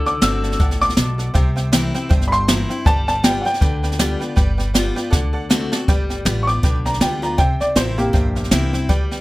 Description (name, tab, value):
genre	rockabilly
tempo	159 BPM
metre	4/4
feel	swing 58% on 8ths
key	unclear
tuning	A4 = 440 Hz
part	warm upright piano	melody	0.0-8.7 s	Bb3 to E6	-21 LUFS	equal	none
part	picked steel-string acoustic guitar	accompaniment	0.0-9.2 s	G2 to F#4	-25 LUFS	left 2 dB	none
part	upright bass	bass	0.0-9.2 s	G1 to D2	-23 LUFS	equal	none
part	tack piano	accompaniment	0.1-9.2 s	A4 to A5	-30 LUFS	right 3 dB	none
part	jazz brush drum kit	drums	0.1-9.2 s	hi-hat, kick drum, snare drum	-18 LUFS	equal	none
room	little or no reverb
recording	none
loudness	-16 LUFS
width	side -19 dB against mid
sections	0.0-5.9 A section; 5.9-9.2 B section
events	upright piano solo 0.0-5.9; drum fill 5.1-5.9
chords	0.0 D7; 1.4 C7; 2.9 G7; 5.1 D7; 5.9 G7; 7.4 C7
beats	0.22 0.60 0.98 | 1.35 1.73 2.11 2.48 | 2.86 3.24 3.61 3.99 | 4.37 4.75 5.12 5.50 | 5.88 6.25 6.63 7.01 | 7.39 7.76 8.14 8.52 | 8.90